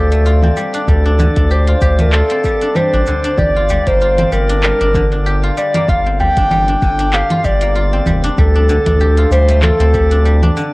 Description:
organic downtempo; 96 BPM; 4/4; swing 56% on 16ths; G minor; A4 = 441 Hz
dark clarinet; melody; 0.0-10.5 s; A4 to G5; -16 LUFS; equal; cassette tape, tape echo
guzheng; arpeggios; 0.0-10.7 s; D3 to G4; -20 LUFS; left 1 dB; cassette tape, tape echo
round analog bass; bass; 0.0-10.5 s; F1 to D2; -13 LUFS; equal; sidechain pumping
drifting glass-harmonics texture; texture; 0.0-10.7 s; D5; -28 LUFS; equal; chorus, built-in reverb, cassette tape
afro-pop drum kit; drums; 0.1-10.7 s; congas, handclaps, hi-hat, shaker; -19 LUFS; right 1 dB; overdrive, cassette tape
electronic kick drum; drums; 0.9-10.1 s; -17 LUFS; equal; overdrive, cassette tape
udu; percussion; 0.9-8.8 s; -23 LUFS; equal
light reverb; home recording on cassette, lossy compression artefacts; -11 LUFS; side -22 dB against mid
0.0-10.7 A section
0.0 Dm7; 3.4 Gm7; 8.4 Dm7

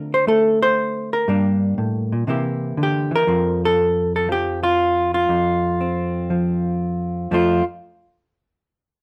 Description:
solo jazz; 120 BPM; 4/4; swing 68% on 8ths; F major; A4 = 441 Hz
hollow-body jazz guitar; solo; 0.0-7.6 s; F2 to C5; -20 LUFS; equal
light reverb; -20 LUFS; mono
0.0-7.3 A section; 7.3-9.0 B section
0.0 Dm7; 1.3 Gm; 2.3 C7; 3.3 F

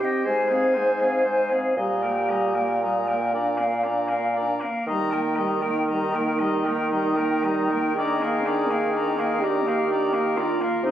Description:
classical, slow romantic movement for wind quintet; 37-42 BPM (dotted quarters); 6/8; rubato; Eb major; A4 = 439 Hz
silver concert flute; melody; 0.0-10.9 s; Eb5 to Bb5; -30 LUFS; left 5 dB
clear oboe; second line; 0.0-10.9 s; G4 to Eb5; -31 LUFS; left 3 dB
dark clarinet; accompaniment; 0.0-10.9 s; Eb4 to Ab4; -27 LUFS; right 2 dB
mellow French horn; accompaniment; 0.0-10.9 s; G3 to D4; -31 LUFS; left 1 dB
warm bassoon; bass; 0.3-10.9 s; Ab2 to Eb3; -24 LUFS; right 1 dB
moderate recital hall reverb, RT60 1.5 s; recorded on a phone in the room, club reverb, compression; -21 LUFS; side -11 dB against mid
0.0-10.9 A section
0.3 Fm/Ab; 1.8 Eb/Bb; 3.3 Bb; 4.9 Eb; 8.0 Bb/Eb

